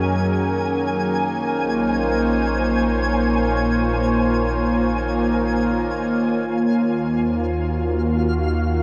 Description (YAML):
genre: ambient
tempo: free time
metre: none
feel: none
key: Eb dorian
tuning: A4 = 441 Hz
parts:
  - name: warm analog pad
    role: sustained chords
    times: 0.0-8.8 s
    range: Eb3 to Db5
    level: -22 LUFS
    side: equal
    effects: chorus, shimmer reverb
  - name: deep rumbling drone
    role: bass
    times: 0.0-8.8 s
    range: Bb1 to Gb2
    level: -28 LUFS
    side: equal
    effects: built-in reverb
  - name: hand-pumped harmonium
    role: drone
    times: 0.0-6.5 s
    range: Eb3 to Bb3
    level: -29 LUFS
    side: equal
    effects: none
  - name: twinkling granular texture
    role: texture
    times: 0.0-8.8 s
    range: F5 to Ab5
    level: -31 LUFS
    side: equal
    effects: built-in reverb, shimmer reverb
room: wet cathedral reverb, RT60 6.1 s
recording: dark, warm production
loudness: -20 LUFS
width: mono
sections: 0.0-6.4 A section; 6.4-8.8 B section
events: none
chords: 0.0 Gb; 1.1 Bbm; 6.4 Ebm7